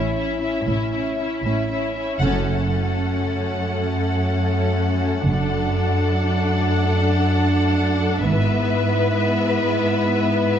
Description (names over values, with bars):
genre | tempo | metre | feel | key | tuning
cinematic, epic orchestral film score | 79 BPM (dotted quarters) | 6/8 | straight | F# minor | A4 = 439 Hz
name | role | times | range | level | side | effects
warm symphonic violin section | melody | 0.0-10.6 s | E5 to F#5 | -28 LUFS | left 4 dB | none
warm symphonic violin section | second line | 0.0-10.6 s | E4 to B4 | -27 LUFS | left 3 dB | none
rich symphonic viola section | accompaniment | 0.0-10.6 s | B3 to D4 | -27 LUFS | right 3 dB | none
dark French horn section | sustained chords | 0.0-10.6 s | A3 to E4 | -26 LUFS | left 4 dB | none
clear chamber cello section | bass | 0.0-10.6 s | F#2 to A2 | -22 LUFS | right 2 dB | none
warm symphonic double bass section | bass | 0.0-2.7, 5.2-5.7, 8.3-8.7 s | F#1 to A1 | -25 LUFS | right 2 dB | none
room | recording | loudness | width
moderate scoring stage reverb, RT60 1.9 s | nothing above 7.6 kHz | -18 LUFS | side -9 dB against mid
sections
0.0-2.2 A section; 2.2-10.6 B section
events
build-up 0.0-2.2; band accent 2.2-2.7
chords
0.0 A; 2.2 F#m; 5.3 D/F#; 8.3 E/G#